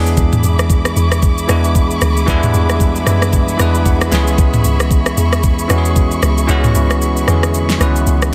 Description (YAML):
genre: amapiano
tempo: 114 BPM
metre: 4/4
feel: swing 58% on 16ths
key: unclear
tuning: A4 = 443 Hz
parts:
  - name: barky tine electric piano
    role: accompaniment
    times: 0.0-8.3 s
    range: D3 to G#5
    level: -20 LUFS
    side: equal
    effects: none
  - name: warm studio string section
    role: sustained chords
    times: 0.0-8.3 s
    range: G#4 to D6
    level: -25 LUFS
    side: equal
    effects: sidechain pumping
  - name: deep log drum bass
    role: bass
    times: 0.0-8.3 s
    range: C#2 to F#2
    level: -18 LUFS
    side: equal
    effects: none
  - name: smooth R&B drum kit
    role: drums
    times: 0.1-8.3 s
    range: kick drum, rim click, shaker, snare drum, toms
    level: -18 LUFS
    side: equal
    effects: soft clipping on snare
room: digital ambience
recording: dense, heavily limited modern master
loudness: -14 LUFS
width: mono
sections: 0.0-8.3 A section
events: tine electric piano fill 3.6-4.4; kick muted 6.5-8.3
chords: 0.0 E7; 4.1 C#m7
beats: | 0.17 0.70 1.23 1.75 | 2.28 2.81 3.33 3.86 | 4.38 4.91 5.44 5.96 | 6.49 7.01 7.54 8.07